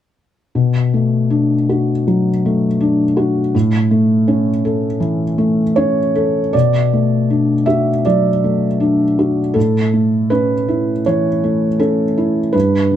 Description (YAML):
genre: neoclassical minimalist piano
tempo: 80 BPM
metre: 4/4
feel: rubato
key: B minor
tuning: A4 = 441 Hz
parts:
  - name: felt-muted upright piano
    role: solo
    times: 0.6-13.0 s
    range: G2 to E5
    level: -13 LUFS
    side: equal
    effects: none
room: light reverb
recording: none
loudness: -13 LUFS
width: side -10 dB against mid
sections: 0.6-6.5 A section; 6.5-13.0 B section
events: none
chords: 0.6 Bm7; 3.5 A; 6.5 Bm7; 9.6 A